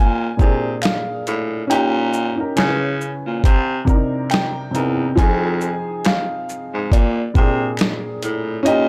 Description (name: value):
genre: lo-fi hip hop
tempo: 69 BPM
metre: 4/4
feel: swing 56% on 16ths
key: unclear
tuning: A4 = 441 Hz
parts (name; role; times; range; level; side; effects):
- felt-muted upright piano; melody; 0.0-8.9 s; D5 to Ab5; -28 LUFS; equal; none
- growling baritone saxophone; bass; 0.0-8.9 s; E2 to Db3; -24 LUFS; equal; none
- dark upright piano; accompaniment; 0.4-8.9 s; Bb2 to Cb5; -24 LUFS; equal; cassette tape
- boom bap sampler-style drum kit; drums; 0.4-8.9 s; hi-hat, kick drum, shaker, snare drum; -19 LUFS; equal; none
- finger snap; percussion; 0.8-8.0 s; none; -36 LUFS; equal; none
room: little or no reverb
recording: dry, gritty hardware recording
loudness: -19 LUFS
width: mono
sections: 0.0-8.9 A section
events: none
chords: 0.0 Bb7; 1.7 Eb7/Bb; 2.6 Dbm7; 3.4 Cm7; 5.2 Fm7; 6.9 Bb7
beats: 0.82 | 1.69 2.56 3.43 4.30 | 5.17 6.04 6.91 7.78 | 8.65